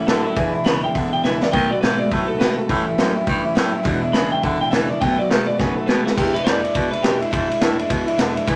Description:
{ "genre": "rockabilly", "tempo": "207 BPM", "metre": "4/4", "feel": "swing 62% on 8ths", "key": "E mixolydian", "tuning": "A4 = 444 Hz", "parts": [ { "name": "electric guitar through a small old amp", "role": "melody", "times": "0.0-8.2 s", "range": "E4 to B5", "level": "-26 LUFS", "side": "equal", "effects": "none" }, { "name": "picked steel-string acoustic guitar", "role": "accompaniment", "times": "0.0-8.6 s", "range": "E2 to F#4", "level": "-26 LUFS", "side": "equal", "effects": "none" }, { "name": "electric guitar through a small old amp", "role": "riff", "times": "0.0-6.2 s", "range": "E2 to G#3", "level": "-28 LUFS", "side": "equal", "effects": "phaser" }, { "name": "raspy baritone saxophone", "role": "bass", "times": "0.1-8.6 s", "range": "E2 to E3", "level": "-27 LUFS", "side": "equal", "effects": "none" }, { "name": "vintage drum kit", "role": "drums", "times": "0.1-8.6 s", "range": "crash cymbal, hi-hat, kick drum, ride cymbal, snare drum", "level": "-24 LUFS", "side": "equal", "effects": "none" } ], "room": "moderate club reverb, RT60 0.7 s", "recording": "none", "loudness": "-19 LUFS", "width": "mono", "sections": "0.0-6.2 A section; 6.2-8.6 B section", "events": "clean electric guitar solo 0.0-6.2; drum fill 1.2, 5.6-6.2", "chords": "0.4 E7; 1.5 B7; 2.7 A7; 3.9 E7; 5.0 B7; 6.2 E7" }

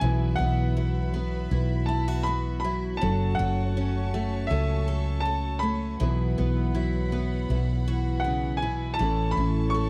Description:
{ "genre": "acoustic folk duo or small band", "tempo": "80 BPM", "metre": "4/4", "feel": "straight", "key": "unclear", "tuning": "A4 = 441 Hz", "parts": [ { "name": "clear upright piano", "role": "melody", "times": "0.0-9.9 s", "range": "E5 to C#6", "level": "-34 LUFS", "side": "equal", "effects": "none" }, { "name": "fingerpicked steel-string acoustic guitar", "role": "accompaniment", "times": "0.0-9.9 s", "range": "A2 to B4", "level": "-34 LUFS", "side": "equal", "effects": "none" }, { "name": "dark chamber string section", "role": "sustained chords", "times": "0.0-9.9 s", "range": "E3 to C#6", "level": "-43 LUFS", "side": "equal", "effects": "none" }, { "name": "picked twelve-string acoustic guitar", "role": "arpeggios", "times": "0.0-9.9 s", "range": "E3 to A4", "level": "-35 LUFS", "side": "equal", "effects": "none" }, { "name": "woody fretless electric bass", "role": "bass", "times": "0.0-9.9 s", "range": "F#1 to C#2", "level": "-29 LUFS", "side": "equal", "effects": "none" } ], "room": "little or no reverb", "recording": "dry, close 1970s-style studio recording", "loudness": "-26 LUFS", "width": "mono", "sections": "0.0-9.9 A section", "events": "none", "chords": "0.0 Esus2/B; 3.0 F#m; 6.0 Esus2/B; 9.0 A" }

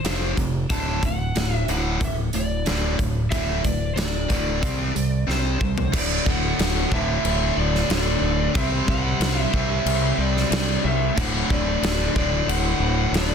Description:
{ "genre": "hard rock", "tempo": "92 BPM", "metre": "4/4", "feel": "straight", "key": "D mixolydian", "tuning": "A4 = 442 Hz", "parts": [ { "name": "lead guitar through a small cranked amp", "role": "melody", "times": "0.0-13.3 s", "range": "C5 to A5", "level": "-28 LUFS", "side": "left 1 dB", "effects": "overdrive, digital delay" }, { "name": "growling fingered electric bass", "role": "bass", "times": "0.0-13.3 s", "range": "D1 to C2", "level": "-25 LUFS", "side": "equal", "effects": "overdrive" }, { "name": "big rock drum kit", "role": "drums", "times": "0.0-13.3 s", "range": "crash cymbal, hi-hat, kick drum, snare drum, toms", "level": "-25 LUFS", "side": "equal", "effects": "soft clipping on kick" }, { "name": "distorted electric guitar", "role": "riff", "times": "0.1-13.3 s", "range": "D2 to C4", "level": "-25 LUFS", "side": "equal", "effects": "overdrive" } ], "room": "small room ambience", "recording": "dense, heavily limited modern master", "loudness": "-20 LUFS", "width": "side -7 dB against mid", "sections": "0.0-5.9 A section; 5.9-13.3 B section", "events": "drum fill 5.3-5.9", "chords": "0.0 F5; 0.7 D; 4.6 C5; 5.9 D; 8.6 C; 11.2 D" }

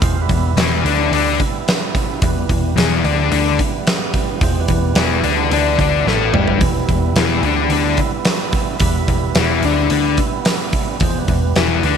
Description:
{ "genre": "blues rock power trio and southern rock", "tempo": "109 BPM", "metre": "4/4", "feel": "straight", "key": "E minor", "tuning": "A4 = 440 Hz", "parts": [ { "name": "overdriven tonewheel organ", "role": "sustained chords", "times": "0.0-12.0 s", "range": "E3 to F4", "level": "-24 LUFS", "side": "right 10 dB", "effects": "lush chorus" }, { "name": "overdriven electric guitar", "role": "riff", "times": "0.0-12.0 s", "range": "E2 to D4", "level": "-18 LUFS", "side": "left 10 dB", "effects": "none" }, { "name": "vintage muted picked electric bass", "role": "bass", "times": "0.0-12.0 s", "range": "E1 to D2", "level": "-20 LUFS", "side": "right 2 dB", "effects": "none" }, { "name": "huge arena drum kit", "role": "drums", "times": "0.0-12.0 s", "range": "hi-hat, kick drum, snare drum, toms", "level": "-18 LUFS", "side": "right 1 dB", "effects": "none" } ], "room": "moderate echo chamber reverb, RT60 1.5 s, small room ambience", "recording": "1960s-style stereo with parts hard left and right", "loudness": "-14 LUFS", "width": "side -7 dB against mid", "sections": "0.0-12.0 A section", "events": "drum fill 6.1-6.6", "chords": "0.0 Em" }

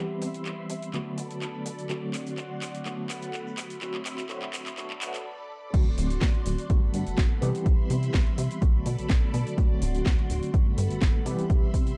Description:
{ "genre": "filtered disco house", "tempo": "125 BPM", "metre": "4/4", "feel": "swing 53% on 16ths", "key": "D mixolydian", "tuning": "A4 = 440 Hz", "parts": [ { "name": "tine electric piano", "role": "accompaniment", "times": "0.0-12.0 s", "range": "D3 to G4", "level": "-36 LUFS", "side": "equal", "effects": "medium tremolo, phaser, vintage 12-bit sampler grit, sidechain pumping, low-pass filter" }, { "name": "string machine, full ensemble", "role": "sustained chords", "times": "0.0-12.0 s", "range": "F#4 to C6", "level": "-42 LUFS", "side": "equal", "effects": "phaser, ensemble chorus, sidechain pumping, low-pass filter" }, { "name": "plucky analog bass", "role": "bass", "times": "0.0-11.9 s", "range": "D1 to C3", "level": "-33 LUFS", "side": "equal", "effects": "sidechain pumping, high-pass filter, low-pass filter" }, { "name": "house drum kit", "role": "drums", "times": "0.2-12.0 s", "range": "crash cymbal, handclaps, hi-hat, shaker, snare drum", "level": "-38 LUFS", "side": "equal", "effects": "sidechain pumping on hats, high-pass filter on hats, studio reverb, high-pass filter on snare, sidechain pumping on perc, high-pass filter on perc, sidechain pumping on cymbals, high-pass filter on cymbals" }, { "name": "maracas", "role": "percussion", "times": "0.2-5.2 s", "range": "none", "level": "barely audible", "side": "none", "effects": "none" }, { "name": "electronic kick drum", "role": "drums", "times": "5.7-11.8 s", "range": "none", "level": "-26 LUFS", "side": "equal", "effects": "studio reverb" } ], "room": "little or no reverb", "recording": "dark, warm production, high-pass filter", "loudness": "-27 LUFS", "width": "mono", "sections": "0.0-5.7 A section; 5.7-12.0 B section", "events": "build-up 0.0-5.7; drum fill 0.0-5.3; filter sweep 0.0-5.7; break 5.3-5.7; drop 5.7-12.0", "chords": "0.0 Cmaj7; 0.9 Bm7; 1.9 D7; 2.9 Gmaj9; 3.6 Cmaj7; 4.8 Bm7; 5.7 D7; 6.7 Gmaj9; 7.4 Cmaj7; 8.6 Bm7; 9.6 D7; 10.5 Gmaj9; 11.3 Cmaj7" }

